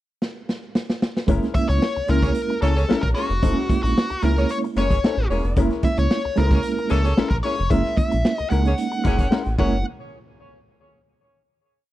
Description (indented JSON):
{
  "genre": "funk",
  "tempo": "112 BPM",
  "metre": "4/4",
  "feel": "straight",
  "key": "F# mixolydian",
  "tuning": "A4 = 442 Hz",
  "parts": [
    { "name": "raw garage drum kit", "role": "drums", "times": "0.2-9.7 s", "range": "crash cymbal, hi-hat, kick drum, snare drum", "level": "-23 LUFS", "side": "equal", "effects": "none" },
    { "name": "hollow-body jazz guitar", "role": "accompaniment", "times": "1.3-9.8 s", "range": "G#3 to A#4", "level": "-27 LUFS", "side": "left 7 dB", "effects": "wah" },
    { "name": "reed electric piano", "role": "stabs", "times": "1.3-9.8 s", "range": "G#3 to E4", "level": "-25 LUFS", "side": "right 5 dB", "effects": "fast tremolo" },
    { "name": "round analog bass", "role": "bass", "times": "1.3-9.8 s", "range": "E1 to C#2", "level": "-22 LUFS", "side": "equal", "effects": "none" },
    { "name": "nasal lead guitar with a parked wah", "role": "melody", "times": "1.5-9.8 s", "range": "F#4 to F#5", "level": "-26 LUFS", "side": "left 1 dB", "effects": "overdrive" },
    { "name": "warm horn section", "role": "second line", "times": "2.2-9.8 s", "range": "A#3 to C#5", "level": "-30 LUFS", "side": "right 2 dB", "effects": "tape echo" }
  ],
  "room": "small room ambience",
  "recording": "dry, close 1970s-style studio recording",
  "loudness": "-18 LUFS",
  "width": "side -15 dB against mid",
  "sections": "0.0-1.3 pickup bar; 1.3-9.9 groove; 9.9-11.9 final hit",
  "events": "drum fill 0.2-1.3",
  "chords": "0.0 N.C.; 1.3 F#9; 9.9 N.C."
}